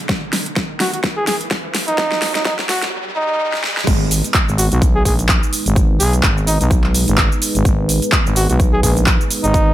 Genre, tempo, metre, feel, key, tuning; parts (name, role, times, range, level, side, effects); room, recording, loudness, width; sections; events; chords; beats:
bass house; 127 BPM; 4/4; swing 57% on 16ths; G# minor; A4 = 439 Hz
dark analog pad; sustained chords; 0.0-9.7 s; G#3 to D#5; -26 LUFS; right 2 dB; chorus, sidechain pumping
riser; sound effects; 0.0-3.9 s; -27 LUFS; right 1 dB
big-room dance drum kit; drums; 0.1-9.7 s; cabasa, crash cymbal, handclaps, hi-hat, snare drum; -19 LUFS; equal; overdrive, studio reverb
electronic kick drum; drums; 0.1-9.6 s; -17 LUFS; equal; overdrive, studio reverb
trumpet with bucket mute; melody; 0.8-9.7 s; D#4 to G#4; -21 LUFS; equal; dub echo
growling FM bass; bass; 3.9-9.7 s; G#1 to B1; -17 LUFS; equal; tube saturation, sidechain pumping
little or no reverb; high-pass filter; -14 LUFS; side -13 dB against mid
0.0-3.9 A section; 3.9-9.7 B section
build-up 0.0-3.9; drum fill 0.0-2.9, 3.5-3.9; riser 0.0-3.9; drop 3.9-9.7
0.0 G#m (rootless); 3.9 G#m
| 0.09 0.56 1.04 1.51 | 1.98 2.46 2.93 3.40 | 3.87 4.34 4.82 5.29 | 5.76 6.23 6.71 7.18 | 7.65 8.12 8.60 9.07 | 9.54